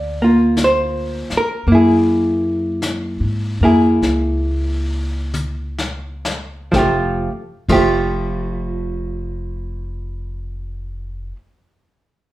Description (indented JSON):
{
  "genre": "jazz ballad",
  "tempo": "42-56 BPM",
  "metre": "4/4",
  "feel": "swing 67% on 8ths",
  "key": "unclear",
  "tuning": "A4 = 442 Hz",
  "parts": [
    { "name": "hollow-body jazz guitar", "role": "accompaniment", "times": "0.0-11.4 s", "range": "F3 to D5", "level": "-16 LUFS", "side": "equal", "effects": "none" },
    { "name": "upright bass", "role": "bass", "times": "0.0-11.3 s", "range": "F1 to Ab2", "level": "-23 LUFS", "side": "equal", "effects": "none" },
    { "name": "vintage brush drum kit", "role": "drums", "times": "0.6-7.9 s", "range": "brushed snare drum, crash cymbal, hi-hat, kick drum, snare drum, toms", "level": "-27 LUFS", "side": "left 2 dB", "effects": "none" }
  ],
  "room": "moderate large studio reverb, RT60 0.8 s",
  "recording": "band playing live in one room",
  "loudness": "-15 LUFS",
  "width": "side -16 dB against mid",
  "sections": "0.0-6.7 A section; 6.7-12.3 B section",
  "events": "slowing down 0.0-6.7; drum fill 5.3-6.7",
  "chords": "0.0 Gm7; 1.7 Gb9; 6.7 Fadd9"
}